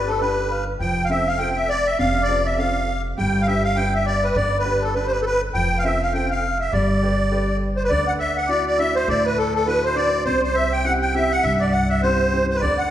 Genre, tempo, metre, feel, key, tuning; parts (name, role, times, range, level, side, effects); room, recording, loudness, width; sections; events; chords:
celtic folk, Celtic reel; 203 BPM; 4/4; swing 58% on 8ths; G mixolydian, D mixolydian from 7.9 s; A4 = 439 Hz
musette accordion; melody; 0.0-12.9 s; A4 to G5; -21 LUFS; right 1 dB
mellow accordion; second line; 0.0-12.9 s; A4 to G5; -26 LUFS; left 4 dB
warm grand piano; accompaniment; 0.0-12.9 s; G2 to B4; -26 LUFS; right 1 dB
upright bass; bass; 0.0-12.9 s; F1 to D2; -26 LUFS; equal
wet recital hall reverb, RT60 1.6 s; recorded in a church or concert hall; -18 LUFS; side -11 dB against mid
0.0-7.9 A section; 7.9-12.9 B section
0.0 G; 0.8 F; 3.2 G; 5.5 F; 6.7 Gadd9; 7.9 Dadd9; 10.3 C